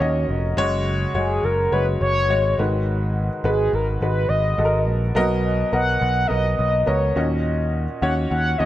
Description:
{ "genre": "piano-driven pop", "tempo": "105 BPM", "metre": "4/4", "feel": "straight", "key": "unclear", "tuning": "A4 = 440 Hz", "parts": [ { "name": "mellow horn-like synth lead", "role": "melody", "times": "0.0-8.7 s", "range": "G#4 to F#5", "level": "-23 LUFS", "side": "equal", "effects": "chorus" }, { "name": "clear upright piano", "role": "accompaniment", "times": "0.0-8.7 s", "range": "G#2 to D#5", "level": "-24 LUFS", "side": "left 1 dB", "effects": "none" }, { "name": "picked electric bass", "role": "bass", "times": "0.0-8.7 s", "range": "E#1 to D#2", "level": "-22 LUFS", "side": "equal", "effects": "none" } ], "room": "light reverb, small room ambience", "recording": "none", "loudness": "-18 LUFS", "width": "side -14 dB against mid", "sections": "0.0-8.7 A section", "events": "none", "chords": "0.0 D#m7; 0.6 F#sus2; 2.6 G#m7; 5.2 Bmaj7; 7.2 D#m7" }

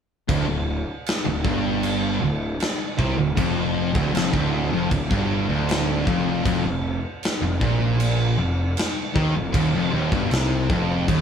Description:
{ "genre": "stoner and doom metal", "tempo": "78 BPM", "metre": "4/4", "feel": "straight", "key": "D phrygian", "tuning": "A4 = 440 Hz", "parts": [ { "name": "thick fuzz guitar", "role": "riff", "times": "0.3-11.2 s", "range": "D2 to Eb3", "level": "-27 LUFS", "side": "left 7 dB", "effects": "distortion" }, { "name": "thick fuzz guitar", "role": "riff", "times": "0.3-11.2 s", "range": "D2 to Eb3", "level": "-25 LUFS", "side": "right 5 dB", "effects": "distortion" }, { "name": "tight distorted guitar", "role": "riff", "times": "0.3-11.2 s", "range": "D2 to Eb3", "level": "-28 LUFS", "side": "left 1 dB", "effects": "distortion" }, { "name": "fuzz picked electric bass", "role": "bass", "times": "0.3-11.2 s", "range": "D1 to Eb2", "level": "-27 LUFS", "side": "equal", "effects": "overdrive" }, { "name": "big rock drum kit", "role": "drums", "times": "0.3-11.2 s", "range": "crash cymbal, kick drum, snare drum", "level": "-26 LUFS", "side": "equal", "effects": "none" } ], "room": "moderate large studio reverb, RT60 0.9 s", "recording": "band playing live in one room", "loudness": "-20 LUFS", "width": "side -7 dB against mid", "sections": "0.3-11.2 A section", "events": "none", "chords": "0.3 Dm; 6.5 F5" }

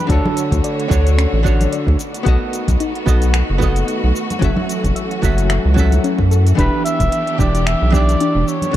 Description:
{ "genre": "sunset chillout", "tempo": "111 BPM", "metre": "4/4", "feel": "swing 56% on 16ths", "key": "E dorian", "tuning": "A4 = 440 Hz", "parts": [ { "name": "trumpet with cup mute", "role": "melody", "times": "0.0-0.6, 6.6-8.8 s", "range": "A4 to E5", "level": "-23 LUFS", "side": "right 1 dB", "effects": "tape echo, shimmer reverb" }, { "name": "archtop guitar, miked and amplified", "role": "accompaniment", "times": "0.0-8.8 s", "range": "D3 to E5", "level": "-21 LUFS", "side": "equal", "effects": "auto-pan, vintage 12-bit sampler grit, tape echo, shimmer reverb" }, { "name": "clear studio string section", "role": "sustained chords", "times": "0.0-8.8 s", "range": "D3 to C#5", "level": "-25 LUFS", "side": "equal", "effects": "shimmer reverb" }, { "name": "soft round pluck", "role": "arpeggios", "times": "0.1-8.5 s", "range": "C#4 to F#5", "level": "-27 LUFS", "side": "left 3 dB", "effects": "none" }, { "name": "round analog bass", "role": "bass", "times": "0.1-8.8 s", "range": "E1 to F#2", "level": "-15 LUFS", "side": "equal", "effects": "tube saturation" }, { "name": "deep house drum kit", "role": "drums", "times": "0.1-8.8 s", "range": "cabasa, finger snaps, hi-hat", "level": "-28 LUFS", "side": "equal", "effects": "none" }, { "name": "electronic kick drum", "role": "drums", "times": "0.1-8.8 s", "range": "none", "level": "-19 LUFS", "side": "equal", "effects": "overdrive" }, { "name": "congas", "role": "percussion", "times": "0.3-8.7 s", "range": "none", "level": "-26 LUFS", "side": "equal", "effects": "none" } ], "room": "light reverb, digital ambience", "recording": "dark, warm production", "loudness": "-14 LUFS", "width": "side -13 dB against mid", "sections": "0.0-8.8 A section", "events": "none", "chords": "0.1 Dmaj7; 2.0 B7; 4.4 F#m7; 6.6 Em7" }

